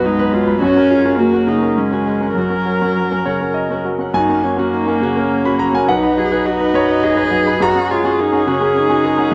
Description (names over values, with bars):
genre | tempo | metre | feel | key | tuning
neoclassical piano and strings | 104 BPM | 3/4 | rubato | F# major | A4 = 439 Hz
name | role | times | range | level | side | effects
dark cello | second line | 0.0-9.3 s | F#3 to G#4 | -20 LUFS | equal | none
bright concert grand piano | accompaniment | 0.0-9.3 s | B1 to B5 | -20 LUFS | equal | none
warm viola | accompaniment | 0.0-9.3 s | A#3 to A#4 | -22 LUFS | equal | none
concert harp | arpeggios | 0.0-9.3 s | F#4 to B5 | -25 LUFS | equal | slapback echo
room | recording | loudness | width
light reverb | dark, warm production | -16 LUFS | mono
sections
0.0-4.2 A section; 4.2-9.3 A section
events
none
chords
0.0 B; 0.6 F#add9; 2.4 F#; 5.9 B; 7.6 F#add9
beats
0.05 | 0.62 1.19 1.77 | 2.36 2.96 3.55 | 4.15 4.73 5.31 | 5.89 6.46 7.04 | 7.62 8.20 8.77 | 9.34